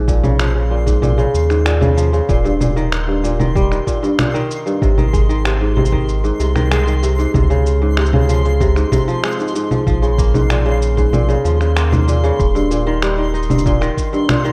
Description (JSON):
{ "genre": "folktronica", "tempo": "95 BPM", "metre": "4/4", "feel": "straight", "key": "Bb minor", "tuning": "A4 = 440 Hz", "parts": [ { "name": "kora", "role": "arpeggios", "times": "0.0-14.5 s", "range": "G2 to Eb4", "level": "-20 LUFS", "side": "equal", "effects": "low-pass filter, delay" }, { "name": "warm sub bass", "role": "bass", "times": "0.0-13.9 s", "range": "Eb1 to Eb2", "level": "-19 LUFS", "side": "equal", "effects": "tube saturation" }, { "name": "twinkling granular texture", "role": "texture", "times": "0.5-14.5 s", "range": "C6", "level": "-33 LUFS", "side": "equal", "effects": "built-in reverb" }, { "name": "electronic kick drum", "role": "drums", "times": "0.1-14.1 s", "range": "none", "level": "-21 LUFS", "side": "equal", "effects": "none" }, { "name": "electronic shaker, congas and finger snaps", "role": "drums", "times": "0.1-14.5 s", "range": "none", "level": "-22 LUFS", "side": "equal", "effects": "none" } ], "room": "light reverb", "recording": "rough home demo mix", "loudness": "-16 LUFS", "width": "mono", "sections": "0.0-14.5 A section", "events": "none", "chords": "0.0 Bbm7; 2.3 Eb; 4.8 Ab; 7.3 Dbmaj7; 9.9 Bbm7; 12.4 Eb" }